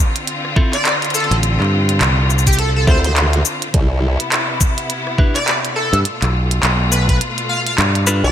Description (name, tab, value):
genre	glitch hop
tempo	104 BPM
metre	4/4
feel	swing 59% on 16ths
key	D dorian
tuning	A4 = 440 Hz
part	clear studio string section	sustained chords	0.0-8.3 s	B2 to F4	-23 LUFS	left 2 dB	vintage 12-bit sampler grit, sidechain pumping
part	glitchy drum kit	drums	0.2-8.2 s	handclaps, hi-hat, rim click, shaker	-19 LUFS	equal	gated reverb
part	clean electric guitar	stabs	0.6-8.3 s	C4 to B4	-23 LUFS	equal	vintage 12-bit sampler grit, sidechain pumping, ping-pong delay
part	electronic kick drum	drums	0.6-7.2 s	none	-15 LUFS	equal	overdrive
part	sync lead	melody	0.7-8.3 s	G4 to F5	-22 LUFS	equal	lush chorus, ping-pong delay
part	modern bright fingered electric bass	bass	1.3-8.2 s	A1 to G2	-16 LUFS	equal	none
part	formant-sweep wobble bass	bass	2.9-4.2, 8.2-8.3 s	B1 to D2	-16 LUFS	equal	chorus
room	light reverb, digital ambience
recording	bright 1980s-style digital production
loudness	-14 LUFS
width	side -10 dB against mid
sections	0.0-8.3 A section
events	kick drops out 7.2-8.3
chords	0.0 Dm7; 3.7 Cmaj7; 6.0 G9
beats	0.28 0.86 | 1.43 2.01 2.59 3.17 | 3.74 4.32 4.90 5.47 | 6.05 6.63 7.20 7.78